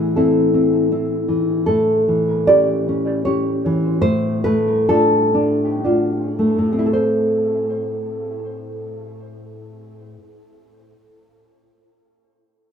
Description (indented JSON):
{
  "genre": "romantic piece for solo classical guitar",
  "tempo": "53-82 BPM",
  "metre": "3/4",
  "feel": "rubato",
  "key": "A minor",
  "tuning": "A4 = 441 Hz",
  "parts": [
    { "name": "nylon-string guitar", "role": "solo", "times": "0.0-10.5 s", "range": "A2 to D5", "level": "-16 LUFS", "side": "equal", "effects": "tape echo" }
  ],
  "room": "moderate recital hall reverb, RT60 1.3 s",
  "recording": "close, detailed microphones",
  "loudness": "-15 LUFS",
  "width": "side -7 dB against mid",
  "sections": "0.0-1.7 A section; 1.7-6.9 B section; 6.9-12.7 C section",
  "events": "slowing down 0.5-6.9",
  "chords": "0.0 Am; 1.7 A7; 4.0 Dm/A; 6.9 Am"
}